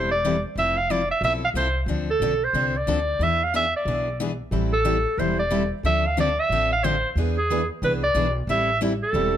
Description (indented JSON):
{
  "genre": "acoustic string swing (jazz manouche)",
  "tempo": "182 BPM",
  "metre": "4/4",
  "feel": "swing 60% on 8ths",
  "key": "A minor",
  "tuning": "A4 = 440 Hz",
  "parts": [
    { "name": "bright clarinet", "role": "melody", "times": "0.0-9.4 s", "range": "G#4 to F5", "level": "-22 LUFS", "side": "right 1 dB", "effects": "plate reverb" },
    { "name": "picked steel-string acoustic guitar", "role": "accompaniment", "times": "0.0-9.3 s", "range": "D3 to A4", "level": "-28 LUFS", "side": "left 4 dB", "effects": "none" },
    { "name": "upright bass", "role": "bass", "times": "0.0-9.4 s", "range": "E1 to E2", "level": "-27 LUFS", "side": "equal", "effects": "none" },
    { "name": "picked plugged-in steel-string acoustic guitar", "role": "accompaniment", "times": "4.5-9.3 s", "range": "D3 to B4", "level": "-32 LUFS", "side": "right 6 dB", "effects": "none" }
  ],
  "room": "moderate club reverb, RT60 0.8 s",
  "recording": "none",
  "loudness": "-20 LUFS",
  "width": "side -10 dB against mid",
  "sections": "0.0-9.4 A section",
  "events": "none",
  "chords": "0.0 Am7; 0.6 Fmaj7; 1.9 Dm7; 3.2 E7; 4.5 Am7; 5.8 Dm7; 7.2 E7; 8.5 Am7",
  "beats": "0.24 | 0.57 0.90 1.23 1.55 | 1.88 2.21 2.54 2.87 | 3.20 3.53 3.86 4.19 | 4.52 4.85 5.18 5.51 | 5.84 6.17 6.50 6.83 | 7.16 7.49 7.82 8.15 | 8.48 8.81 9.14"
}